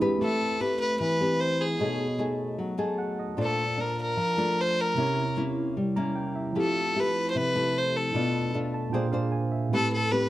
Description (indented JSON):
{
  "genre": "bossa nova",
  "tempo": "151 BPM",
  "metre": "4/4",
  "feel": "straight",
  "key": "A minor",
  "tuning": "A4 = 439 Hz",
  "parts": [
    { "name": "barky tine electric piano", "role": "accompaniment", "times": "0.0-10.3 s", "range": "A2 to Bb5", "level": "-32 LUFS", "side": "right 4 dB", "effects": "none" },
    { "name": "nylon-string guitar", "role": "accompaniment", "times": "0.0-10.3 s", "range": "Bb2 to C5", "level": "-28 LUFS", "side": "left 2 dB", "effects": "none" },
    { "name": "warm fiddle", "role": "melody", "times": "0.2-10.3 s", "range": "G#4 to C5", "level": "-27 LUFS", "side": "equal", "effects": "none" }
  ],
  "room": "light reverb",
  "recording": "close, detailed microphones",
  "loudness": "-25 LUFS",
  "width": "side -15 dB against mid",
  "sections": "0.2-10.3 A section",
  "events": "tine electric piano fill 2.6-3.4, 5.8-6.6, 8.5-9.7",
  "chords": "0.2 Am9; 1.8 B13; 3.4 Bbmaj7; 5.0 C7b9; 6.6 Fmaj9; 8.1 Bm7b5; 8.9 Bb9; 9.7 Am9"
}